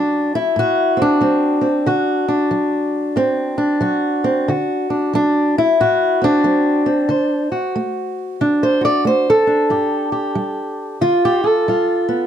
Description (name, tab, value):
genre	acoustic country blues, solo or duo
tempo	92 BPM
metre	4/4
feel	swing 62% on 8ths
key	D mixolydian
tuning	A4 = 439 Hz
part	fingerpicked old ladder-braced acoustic guitar	solo	0.0-12.3 s	G2 to D5	-15 LUFS	equal	none
room	light reverb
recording	close, detailed microphones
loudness	-15 LUFS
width	side -9 dB against mid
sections	0.0-12.3 A section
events	none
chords	0.0 D7; 9.7 G7(no3)